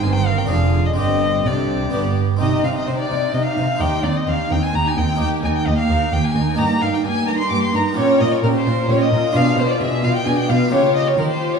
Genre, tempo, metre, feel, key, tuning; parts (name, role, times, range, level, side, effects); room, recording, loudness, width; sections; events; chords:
classical, baroque-style concerto movement with solo episodes; 130 BPM; 3/4; straight; C minor; A4 = 436 Hz
rich violin; melody; 0.0-11.6 s; Bb4 to D6; -22 LUFS; left 2 dB
warm symphonic violin section; melody; 0.0-11.6 s; Eb4 to C5; -30 LUFS; left 7 dB
warm studio violin section; second line; 0.0-11.6 s; B3 to D6; -25 LUFS; left 4 dB
harpsichord; accompaniment; 0.0-11.6 s; Eb2 to C5; -23 LUFS; right 1 dB
rich studio viola section; accompaniment; 0.0-11.6 s; D3 to F4; -23 LUFS; right 2 dB
dark chamber double bass section; bass; 0.0-2.4 s; F1 to C2; -22 LUFS; right 4 dB
rich chamber cello section; bass; 0.0-11.6 s; Eb2 to Eb3; -22 LUFS; right 2 dB
wet recital hall reverb, RT60 1.5 s; -16 LUFS; side -5 dB against mid
0.0-2.4 A section; 2.4-11.6 A section
0.0 Ab; 0.5 Ddim/F; 1.0 Gsus4; 1.9 G; 2.4 Cm; 3.8 Cm/Eb; 5.2 Eb; 6.6 Eb/G; 8.0 Gm7b5/Bb; 9.3 Bdim7; 10.7 Gm7b5/Db